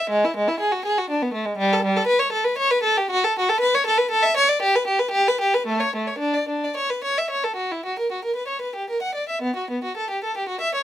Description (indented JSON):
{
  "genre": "classical, baroque-style suite movement for unaccompanied violin",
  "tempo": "104-122 BPM",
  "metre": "3/4",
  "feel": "rubato",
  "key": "unclear",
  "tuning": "A4 = 440 Hz",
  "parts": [
    { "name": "warm violin", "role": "solo", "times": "0.0-10.8 s", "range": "G3 to F#5", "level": "-20 LUFS", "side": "equal", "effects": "none" }
  ],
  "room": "little or no reverb",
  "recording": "close, detailed microphones",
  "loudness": "-20 LUFS",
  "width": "side -12 dB against mid",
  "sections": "0.0-7.8 A section; 7.8-10.8 A section",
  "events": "none",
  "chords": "none",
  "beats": "| 0.08 0.58 1.08 | 1.58 2.08 2.58 | 3.10 3.62 4.13 | 4.64 5.15 5.67 | 6.22 6.78 7.32 | 7.85 8.36 8.88 | 9.42 9.95 10.47"
}